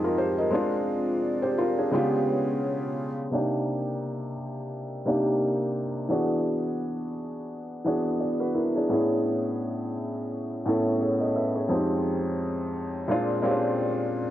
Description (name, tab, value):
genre	lo-fi hip hop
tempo	86 BPM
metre	4/4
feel	swing 58% on 16ths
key	unclear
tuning	A4 = 441 Hz
part	felt-muted upright piano	accompaniment	0.0-14.3 s	F2 to E5	-25 LUFS	equal	cassette tape
part	dark analog pad	sustained chords	0.0-3.3 s	Ab3 to Eb5	-33 LUFS	equal	chorus, phaser, cassette tape
room	moderate lush hall reverb, RT60 2.7 s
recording	home recording on cassette, low-pass filter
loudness	-24 LUFS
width	side -12 dB against mid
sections	0.0-3.3 A section; 3.3-14.3 B section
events	filter sweep 3.3-14.3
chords	0.0 Fm7; 0.5 Dm7b5; 1.9 Db7#11; 3.3 Cm7; 6.1 E7; 8.9 Amaj9; 11.7 Fm7; 13.1 Bb7